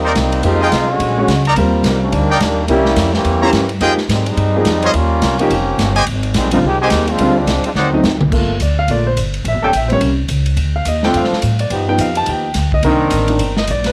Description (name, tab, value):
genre	jazz, big band swing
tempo	213 BPM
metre	4/4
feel	swing 60% on 8ths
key	G minor from 8.3 s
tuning	A4 = 438 Hz
part	bright trombone section	second line	0.0-8.2 s	D3 to G4	-20 LUFS	equal	plate reverb
part	brilliant trumpet section	stabs	0.0-7.9 s	Eb4 to Bb5	-19 LUFS	equal	plate reverb
part	upright bass	bass	0.0-13.9 s	E1 to A2	-20 LUFS	equal	none
part	swinging big-band drum kit	drums	0.2-13.9 s	crash cymbal, hi-hat, kick drum, ride cymbal, snare drum, toms	-23 LUFS	equal	cassette tape
part	warm grand piano	accompaniment	0.4-13.9 s	D3 to A5	-20 LUFS	equal	plate reverb
part	clear trombone section	sustained chords	9.6-13.6 s	Eb3 to Bb4	-22 LUFS	equal	plate reverb
room	moderate booth ambience, RT60 0.2 s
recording	home recording on cassette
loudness	-15 LUFS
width	mono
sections	0.0-8.3 A section; 8.3-13.9 B section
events	trombone section solo 0.0-8.3; drum fill 7.8-8.3; grand piano solo 8.3-13.9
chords	0.4 Fm9; 1.0 Bb7alt; 1.6 Ebmaj7; 2.7 C7b9; 3.8 Fm9; 6.1 Abmaj7; 7.2 Dm7b5; 7.8 D7b9; 8.3 Gm9; 9.5 A7b9; 10.6 Dm7; 11.7 G7b13; 12.8 Cm9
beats	0.16 | 0.44 0.72 1.00 1.29 | 1.57 1.85 2.13 2.41 | 2.69 2.98 3.26 3.54 | 3.82 4.10 4.38 4.66 | 4.95 5.23 5.51 5.79 | 6.07 6.35 6.63 6.92 | 7.20 7.48 7.76 8.04 | 8.32 8.61 8.89 9.17 | 9.45 9.73 10.02 10.30 | 10.58 10.86 11.14 11.43 | 11.71 11.99 12.27 12.55 | 12.83 13.12 13.40 13.68